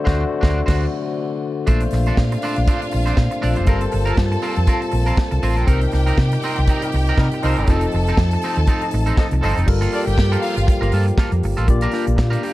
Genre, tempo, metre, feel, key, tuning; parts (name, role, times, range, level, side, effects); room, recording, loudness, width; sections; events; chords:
disco; 120 BPM; 4/4; swing 56% on 16ths; G minor; A4 = 440 Hz
barky tine electric piano; accompaniment; 0.0-12.5 s; Bb2 to D5; -25 LUFS; left 4 dB; overdrive
dark French horn section; sustained chords; 0.0-12.5 s; Bb2 to D5; -28 LUFS; right 1 dB
electric guitar at the edge of break-up; accompaniment; 0.1-12.5 s; Bb3 to D5; -27 LUFS; right 3 dB; lush chorus
hollow-body short-scale fingered electric bass; bass; 0.1-12.4 s; F1 to C3; -19 LUFS; equal
modern studio drum kit; drums; 0.1-12.5 s; crash cymbal, hi-hat, kick drum, snare drum; -20 LUFS; equal
clear studio string section; second line; 1.7-10.9 s; D4 to A5; -27 LUFS; left 1 dB; tape echo
clear horn section; stabs; 6.8-9.6 s; F3 to Bb4; -26 LUFS; right 1 dB
little or no reverb; dark, warm production; -16 LUFS; side -16 dB against mid
0.0-1.7 A section; 1.7-9.7 B section; 9.7-12.5 C section
band accent 0.0-1.7; tine electric piano fill 0.7-1.7
0.0 D7; 1.7 Bbmaj9; 3.7 Gm11; 5.7 Cm7; 7.7 F7; 9.7 Gm9; 11.7 Bb6